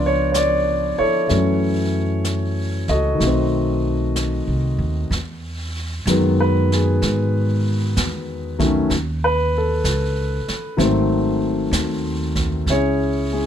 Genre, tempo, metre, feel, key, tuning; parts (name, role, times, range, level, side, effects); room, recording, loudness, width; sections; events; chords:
jazz ballad; 63 BPM; 4/4; swing 67% on 8ths; E major; A4 = 439 Hz
dark baby grand piano; accompaniment; 0.0-13.5 s; D#3 to D#5; -20 LUFS; left 1 dB
upright bass; bass; 0.0-13.5 s; G#1 to G#2; -22 LUFS; right 1 dB
jazz brush drum kit; drums; 0.3-13.5 s; brushed snare drum, hi-hat, kick drum, snare drum; -28 LUFS; right 2 dB
little or no reverb; close, detailed microphones; -17 LUFS; side -9 dB against mid
0.0-5.1 A section; 5.1-13.5 B section
0.0 C#7b9; 1.3 F#m7; 3.2 B7b9; 5.1 Emaj9; 8.9 B9; 10.8 G#7b9; 12.7 C#m